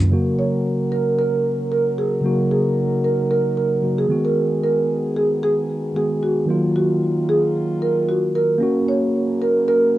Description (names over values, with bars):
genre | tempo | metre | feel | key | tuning
afrobeats | 113 BPM | 4/4 | swing 55% on 16ths | F# major | A4 = 440 Hz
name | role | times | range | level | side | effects
mellow tine electric piano | accompaniment | 0.0-10.0 s | C#3 to F#4 | -21 LUFS | equal | slow stereo tremolo
mellow French horn section | sustained chords | 0.1-10.0 s | C#3 to A#4 | -27 LUFS | left 2 dB | none
marimba with medium mallets | melody | 0.4-10.0 s | F#4 to C#5 | -20 LUFS | right 2 dB | cassette tape
room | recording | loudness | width
moderate booth ambience, RT60 0.2 s | home recording on cassette | -17 LUFS | side -15 dB against mid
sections
0.1-8.6 A section; 8.6-10.0 B section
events
none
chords
0.1 F#; 4.1 B6; 6.5 D#madd9; 8.6 F#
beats
| 0.11 0.64 1.17 1.70 | 2.23 2.76 3.29 3.83 | 4.36 4.89 5.42 5.95 | 6.48 7.01 7.54 8.07 | 8.60 9.13 9.67